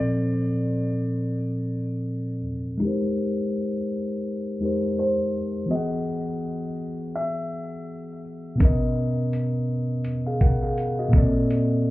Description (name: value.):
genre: lo-fi hip hop.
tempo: 83 BPM.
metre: 4/4.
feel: swing 60% on 16ths.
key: unclear.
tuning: A4 = 445 Hz.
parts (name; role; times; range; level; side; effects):
felt-muted upright piano; melody; 0.0-8.2 s; C5 to E5; -31 LUFS; equal; low-pass filter, tape echo.
mellow tine electric piano; accompaniment; 0.0-11.9 s; Bb2 to F#5; -24 LUFS; equal; cassette tape, low-pass filter.
dusty soul sampler-style drum kit; drums; 8.6-11.7 s; hi-hat, kick drum; -18 LUFS; equal; none.
room: light reverb.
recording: heard muffled through a wall, club reverb, EQ.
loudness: -23 LUFS.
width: side -17 dB against mid.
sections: 0.0-2.8 A section; 2.8-11.9 B section.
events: break 0.0-2.8; filter sweep 2.8-11.9.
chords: 0.0 Bbmaj9; 2.8 Abmaj9; 5.7 Emaj9; 8.6 Bmaj9; 11.1 Bbmaj9.